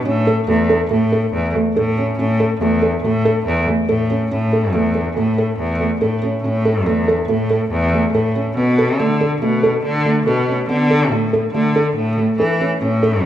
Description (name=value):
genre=contemporary instrumental, chamber music in an uneven meter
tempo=141 BPM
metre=5/4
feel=straight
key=A major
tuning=A4 = 444 Hz
part: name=felt-muted upright piano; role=arpeggios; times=0.1-13.2 s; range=A3 to A4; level=-18 LUFS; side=right 1 dB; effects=none
part: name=bright cello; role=bass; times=0.1-13.3 s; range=E2 to E3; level=-18 LUFS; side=left 1 dB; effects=none
room=wet recital hall reverb, RT60 1.6 s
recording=none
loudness=-15 LUFS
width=side -11 dB against mid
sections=0.0-4.3 A section; 4.3-13.3 B section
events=none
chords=0.1 A; 8.6 Bm7; 10.7 Dsus2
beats=| 0.06 0.48 0.91 1.33 1.76 | 2.19 2.61 3.04 3.46 3.89 | 4.31 4.74 5.16 5.59 6.01 | 6.44 6.87 7.29 7.71 8.14 | 8.56 8.99 9.41 9.84 10.27 | 10.69 11.12 11.54 11.96 12.39 | 12.81 13.24